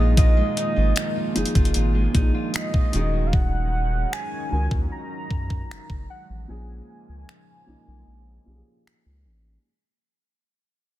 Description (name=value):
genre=contemporary R&B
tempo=76 BPM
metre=4/4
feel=straight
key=unclear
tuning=A4 = 441 Hz
part: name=warm velvety synth lead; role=melody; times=0.0-9.2 s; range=Eb5 to Bb5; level=-30 LUFS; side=right 2 dB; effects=chorus, low-pass filter
part: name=felt-muted upright piano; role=accompaniment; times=0.0-9.7 s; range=Bb2 to Bb4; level=-31 LUFS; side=equal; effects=low-pass filter
part: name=chorused pulse-width pad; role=sustained chords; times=0.0-9.6 s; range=Db3 to Eb4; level=-33 LUFS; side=right 3 dB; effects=sidechain pumping, low-pass filter
part: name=fingerpicked steel-string acoustic guitar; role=arpeggios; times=0.0-3.9 s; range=Bb2 to Gb4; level=-31 LUFS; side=equal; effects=low-pass filter
part: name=saturated sub bass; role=bass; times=0.0-9.6 s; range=Eb1 to Gb2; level=-23 LUFS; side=equal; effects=none
part: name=detuned 8-bit digital drum machine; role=drums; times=0.2-9.1 s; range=finger snaps, hi-hat, kick drum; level=-22 LUFS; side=equal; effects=soft clipping on snare
room=little or no reverb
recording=dense, heavily limited modern master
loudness=-20 LUFS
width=side -14 dB against mid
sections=0.0-9.6 A section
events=fade-out 0.0-9.6; filter sweep 0.0-9.6; break 6.5-9.6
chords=0.0 Bb7sus4; 2.9 Ebm11; 6.5 Bbm7